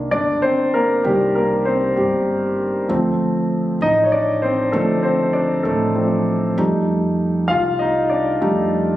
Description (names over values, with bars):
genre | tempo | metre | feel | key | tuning
six-eight pop ballad | 65 BPM (dotted quarters) | 6/8 | straight | unclear | A4 = 440 Hz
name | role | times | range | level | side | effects
warm grand piano | accompaniment | 0.0-9.0 s | Eb3 to F5 | -17 LUFS | equal | none
upright bass | bass | 0.0-9.0 s | G1 to F2 | -25 LUFS | right 1 dB | none
room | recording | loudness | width
moderate recital hall reverb, RT60 1.4 s | recorded on a phone in the room, club reverb, compression | -16 LUFS | side -14 dB against mid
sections
0.0-9.0 A section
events
grand piano solo 0.0-9.0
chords
0.0 Cm7; 2.9 Dm7; 6.6 F7